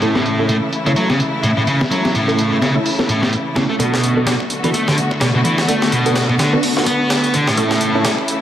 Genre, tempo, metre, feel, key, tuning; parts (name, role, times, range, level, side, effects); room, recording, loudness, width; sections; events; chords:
breakbeat, breaks; 127 BPM; 4/4; swing 57% on 16ths; B minor; A4 = 439 Hz
clear studio string section; sustained chords; 0.0-8.4 s; C#3 to F#4; -21 LUFS; left 1 dB; sidechain pumping, low-pass filter
biting overdriven guitar; riff; 0.0-8.1 s; A2 to B3; -17 LUFS; equal; vintage 12-bit sampler grit, low-pass filter, dub echo
orchestra-hit-like synth stab; stabs; 0.0-8.0 s; A3 to A4; -21 LUFS; right 1 dB; built-in reverb, phaser, dub echo
breakbeat sampler-style drum kit; drums; 0.0-8.4 s; hi-hat, kick drum, snare drum; -21 LUFS; equal; high-pass filter on hats, low-pass filter on hats, small room ambience, soft clipping on snare, high-pass filter on snare, low-pass filter on snare, high-pass filter on kick, low-pass filter on kick
dark detuned saw bass; bass; 3.8-8.4 s; barely audible
moderate digital room reverb, RT60 1.1 s; dense, heavily limited modern master, vinyl crackle, high-pass filter; -14 LUFS; side -11 dB against mid
0.0-3.8 A section; 3.8-8.4 B section
build-up 3.8-8.4; filter sweep on synth stab 3.8-8.4
0.0 A; 3.8 Bm7; 7.6 A